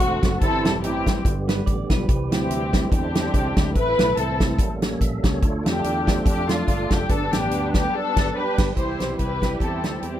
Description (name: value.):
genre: uptempo gospel.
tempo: 144 BPM.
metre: 4/4.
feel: swing 56% on 8ths.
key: C major.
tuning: A4 = 440 Hz.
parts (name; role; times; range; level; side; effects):
muted studio string section; melody; 0.0-10.2 s; A3 to C5; -24 LUFS; left 1 dB; none.
tonewheel organ; sustained chords; 0.0-10.2 s; D3 to E5; -30 LUFS; right 3 dB; slow rotary speaker, overdrive, chorus vibrato.
fingered electric bass; bass; 0.0-10.2 s; E1 to F2; -28 LUFS; equal; none.
natural country drum kit; drums; 0.0-10.1 s; crash cymbal, hi-hat, kick drum, snare drum; -22 LUFS; equal; none.
mellow tine electric piano; accompaniment; 0.2-10.0 s; G2 to D5; -32 LUFS; left 2 dB; none.
clean electric guitar; second line; 1.5-2.3 s; B4 to D5; -34 LUFS; right 10 dB; none.
room: small room ambience.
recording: rough home demo mix.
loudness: -19 LUFS.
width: side -11 dB against mid.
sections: 0.0-8.8 A section; 8.8-10.2 B section.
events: band accent 7.9-8.8.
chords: 0.4 C; 1.2 G; 2.1 C; 2.9 E7alt; 3.8 Am; 4.6 A7b9; 5.4 Dm; 7.1 G; 8.8 C.